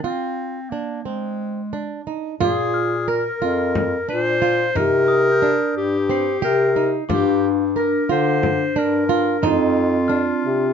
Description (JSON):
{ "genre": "contemporary instrumental, chamber music in an uneven meter", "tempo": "179 BPM (eighths)", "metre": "7/8", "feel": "straight", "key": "F dorian", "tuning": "A4 = 442 Hz", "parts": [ { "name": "bright clarinet", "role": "melody", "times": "0.0-10.7 s", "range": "Ab3 to C5", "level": "-22 LUFS", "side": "left 1 dB", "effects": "none" }, { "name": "flamenco guitar", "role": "arpeggios", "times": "0.0-10.6 s", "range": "C4 to Bb4", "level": "-24 LUFS", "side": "right 8 dB", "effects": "none" }, { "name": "warm bass clarinet", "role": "bass", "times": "2.4-10.7 s", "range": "F2 to D3", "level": "-21 LUFS", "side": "left 3 dB", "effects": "none" }, { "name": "frame drum", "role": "percussion", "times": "2.4-10.3 s", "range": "none", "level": "-26 LUFS", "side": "left 3 dB", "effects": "none" }, { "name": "glockenspiel with rubber mallets", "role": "texture", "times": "2.7-10.7 s", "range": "Eb6 to C7", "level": "-32 LUFS", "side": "left 7 dB", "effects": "none" }, { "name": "vibraphone with soft mallets", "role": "second line", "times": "7.1-10.7 s", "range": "C4 to D4", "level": "-23 LUFS", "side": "left 2 dB", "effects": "none" } ], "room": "light reverb", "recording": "nothing above 7.6 kHz", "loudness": "-17 LUFS", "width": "side -7 dB against mid", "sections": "0.0-2.4 A section; 2.4-10.7 B section", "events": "none", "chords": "0.1 Fm7; 2.4 Bb7(no3); 4.8 Cm7; 7.1 Gm7; 9.4 F7(no3)" }